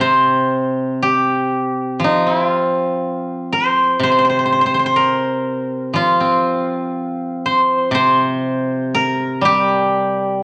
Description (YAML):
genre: chinese traditional, Chinese solo plucked strings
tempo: 60 BPM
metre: 4/4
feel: rubato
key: unclear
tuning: A4 = 440 Hz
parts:
  - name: steel-string zither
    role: solo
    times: 0.0-10.4 s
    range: C3 to C5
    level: -17 LUFS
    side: equal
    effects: none
room: moderate recital hall reverb, RT60 1.6 s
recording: worn, warbling old tape, cassette tape, warbly pitch drift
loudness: -17 LUFS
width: mono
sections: 0.0-10.4 A section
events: none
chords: none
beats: 0.98 2.01 3.04 | 4.02 4.98 5.95 6.93 | 7.93 8.94 9.95